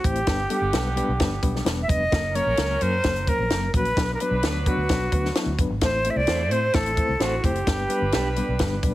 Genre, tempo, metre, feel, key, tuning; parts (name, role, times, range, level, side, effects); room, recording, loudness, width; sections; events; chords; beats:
uptempo 1960s-style soul; 130 BPM; 4/4; straight; A4 = 440 Hz
bright silver concert flute; melody; 0.0-8.4 s; F#4 to E5; -25 LUFS; equal
mellow reed electric piano; accompaniment; 0.0-8.9 s; F#3 to C5; -29 LUFS; left 3 dB; fast tremolo
vintage muted fingered electric bass; bass; 0.0-8.9 s; E1 to A2; -27 LUFS; equal
compact cocktail drum kit; drums; 0.0-8.9 s; hi-hat, kick drum, snare drum; -25 LUFS; equal
warm horn section; second line; 0.3-8.9 s; D3 to C5; -32 LUFS; right 2 dB
mellow electric guitar; stabs; 6.3-8.3 s; D4 to C5; -32 LUFS; right 4 dB; spring reverb
small room ambience; heavily compressed radio sound, multiband compression; -20 LUFS; side -15 dB against mid
0.0-8.9 A section
0.3 G; 2.1 F#; 4.0 Bm; 5.8 Am; 7.7 G
| 0.27 0.73 1.20 1.66 | 2.12 2.58 3.04 3.51 | 3.97 4.43 4.89 5.36 | 5.82 6.28 6.75 7.21 | 7.67 8.14 8.60